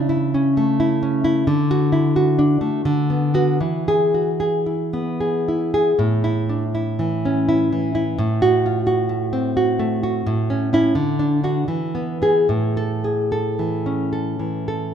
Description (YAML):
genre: romantic piece for solo classical guitar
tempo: 71-89 BPM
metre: 3/4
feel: rubato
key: A major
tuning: A4 = 440 Hz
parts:
  - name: nylon-string guitar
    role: solo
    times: 0.0-14.9 s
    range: A2 to A4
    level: -17 LUFS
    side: equal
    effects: none
room: moderate concert hall reverb, RT60 2.4 s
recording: minimal, uncompressed stereo recording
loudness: -17 LUFS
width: side -8 dB against mid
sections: 0.0-14.9 A section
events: none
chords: 0.0 A/C#; 1.5 D; 2.8 Bm/D; 3.6 E; 6.0 A; 8.2 Am6; 10.3 A; 10.9 D; 11.7 E; 12.5 A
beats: 0.10 0.79 | 1.47 2.15 2.85 | 3.60 4.40 5.20 | 5.97 6.74 7.47 | 8.17 8.87 9.55 | 10.25 10.95 11.67 | 12.49 13.31 14.12